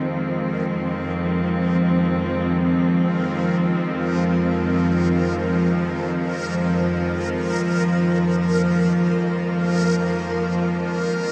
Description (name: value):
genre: dark ambient drone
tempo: free time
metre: none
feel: none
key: unclear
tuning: A4 = 438 Hz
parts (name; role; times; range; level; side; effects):
- rich symphonic cello section; sustained chords; 0.0-11.3 s; Eb3 to C4; -27 LUFS; equal; none
- bowed-like drone; drone; 0.0-11.3 s; F2 to F3; -23 LUFS; equal; built-in reverb
- backwards swelling texture; texture; 0.0-11.3 s; Bb4; -31 LUFS; equal; built-in reverb
room: wet huge ambient reverb, RT60 8.1 s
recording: in a vast, echoing space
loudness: -21 LUFS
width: mono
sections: 0.0-11.3 A section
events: fade-in on synth texture 0.0-11.3; fade-out on cello section 0.0-11.3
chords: 0.0 Fm